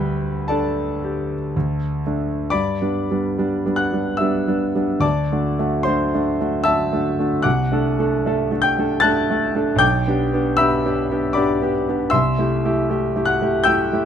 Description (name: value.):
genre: classical, romantic nocturne for solo piano.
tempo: 56-80 BPM.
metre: 3/4.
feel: rubato.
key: G major.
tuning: A4 = 438 Hz.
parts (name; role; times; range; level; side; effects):
warm concert grand piano; solo; 0.0-14.1 s; B1 to A6; -17 LUFS; equal; none.
room: little or no reverb.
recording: close, detailed microphones.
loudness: -17 LUFS.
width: side -8 dB against mid.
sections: 0.0-2.5 A section; 2.5-14.1 B section.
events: none.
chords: 0.0 Dsus4; 1.5 D5; 2.5 G; 5.0 D; 7.5 D7/C; 9.8 G/B; 12.1 C6.